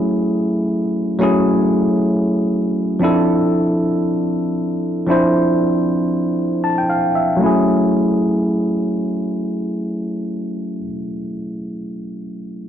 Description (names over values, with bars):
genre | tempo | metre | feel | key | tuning
amapiano | free time | none | none | F# minor | A4 = 440 Hz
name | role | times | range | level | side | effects
bell-like tine electric piano | accompaniment | 0.0-12.7 s | F3 to A5 | -16 LUFS | equal | wide subtle chorus, low-pass filter
room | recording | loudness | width
light reverb, digital ambience | dry, gritty hardware recording, transformer saturation | -16 LUFS | side -10 dB against mid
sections
0.0-7.4 A section; 7.4-11.5 B section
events
filter sweep on tine electric piano 0.0-7.4; tine electric piano fill 6.4-7.4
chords
0.0 F#m9; 3.0 Dm9; 7.4 F#m9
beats
free time